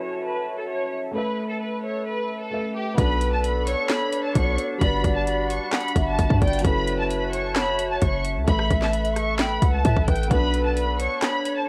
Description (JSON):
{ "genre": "hip hop, trap", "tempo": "131 BPM", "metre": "4/4", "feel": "half-time", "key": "B minor", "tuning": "A4 = 435 Hz", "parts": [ { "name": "rich studio violin section", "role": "melody", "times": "0.0-11.7 s", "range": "G4 to C#6", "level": "-30 LUFS", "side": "equal", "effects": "low-pass filter, cassette tape, tape echo" }, { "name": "felt-muted upright piano", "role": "accompaniment", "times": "0.0-11.7 s", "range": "F#3 to E5", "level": "-34 LUFS", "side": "equal", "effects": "low-pass filter, cassette tape" }, { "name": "hollow large flute ensemble", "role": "sustained chords", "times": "0.0-11.7 s", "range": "D4 to B5", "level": "-34 LUFS", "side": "equal", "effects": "low-pass filter, cassette tape" }, { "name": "polished pan flute", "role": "second line", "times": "3.0-11.7 s", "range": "B4 to G5", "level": "-31 LUFS", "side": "equal", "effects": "cassette tape, tape echo" }, { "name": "warm 808-style bass", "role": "bass", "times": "3.0-11.1 s", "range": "F#1 to A2", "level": "-26 LUFS", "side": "equal", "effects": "none" }, { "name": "trap drum kit", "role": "drums", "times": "3.0-11.6 s", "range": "handclaps, hi-hat, kick drum, rim click, snare drum", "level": "-27 LUFS", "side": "equal", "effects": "cassette tape" } ], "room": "light reverb, studio ambience", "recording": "home recording on cassette", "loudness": "-23 LUFS", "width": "mono", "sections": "0.0-3.0 A section; 3.0-11.7 B section", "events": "filter sweep 0.0-3.0", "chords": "0.0 F#m7; 1.1 Asus2; 3.0 Bm7; 4.8 Gmaj7; 6.6 F#m7; 8.5 Asus2; 10.3 Bm7" }